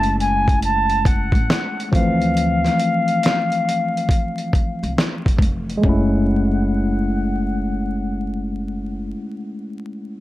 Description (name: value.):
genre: lo-fi hip hop.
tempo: 69 BPM.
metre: 4/4.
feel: swing 65% on 16ths.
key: F# minor.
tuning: A4 = 440 Hz.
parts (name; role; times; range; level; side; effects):
bright reedy silver concert flute; melody; 0.0-9.1 s; F5 to A5; -22 LUFS; left 2 dB; low-pass filter.
tine electric piano; accompaniment; 0.0-10.2 s; E3 to E4; -22 LUFS; left 1 dB; fast stereo tremolo, cassette tape, low-pass filter.
upright bass; bass; 0.0-9.1 s; F1 to D2; -24 LUFS; equal; none.
dusty soul sampler-style drum kit; drums; 0.0-6.1 s; hi-hat, kick drum, snare drum; -19 LUFS; equal; none.
room: light reverb.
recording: vinyl crackle.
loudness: -17 LUFS.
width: side -16 dB against mid.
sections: 0.0-5.8 A section; 5.8-9.3 B section.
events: filter sweep 0.0-5.8.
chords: 0.0 F#m9; 1.9 Dm9; 5.8 F#m9.